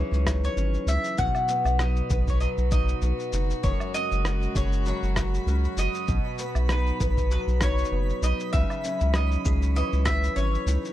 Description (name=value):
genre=folktronica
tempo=98 BPM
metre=4/4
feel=swing 56% on 16ths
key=B major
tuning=A4 = 440 Hz
part: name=mandolin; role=melody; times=0.0-10.9 s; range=B4 to F#5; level=-30 LUFS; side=left 1 dB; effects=digital delay, plate reverb
part: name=warm string quartet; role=sustained chords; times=0.0-10.9 s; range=C#3 to F#4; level=-36 LUFS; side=left 2 dB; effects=plate reverb
part: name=nylon-string guitar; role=arpeggios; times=0.0-10.9 s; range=F#2 to B4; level=-32 LUFS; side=equal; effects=digital delay, plate reverb
part: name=round analog bass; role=bass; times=0.0-10.8 s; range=F#1 to C#2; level=-24 LUFS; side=equal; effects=none
part: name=electronic shaker, rim click and woodblock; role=drums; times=0.1-10.9 s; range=none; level=-33 LUFS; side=equal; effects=none
part: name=electronic kick drum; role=drums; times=0.3-10.2 s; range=none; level=-28 LUFS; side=equal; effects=none
part: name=twinkling granular texture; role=texture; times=4.7-10.9 s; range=B5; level=-42 LUFS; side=right 3 dB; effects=built-in reverb, plate reverb
room=light reverb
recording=dark, warm production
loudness=-22 LUFS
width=side -13 dB against mid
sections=0.0-10.9 A section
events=none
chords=0.0 C#madd9; 1.2 B; 3.6 F#sus2; 6.1 B; 8.5 C#madd9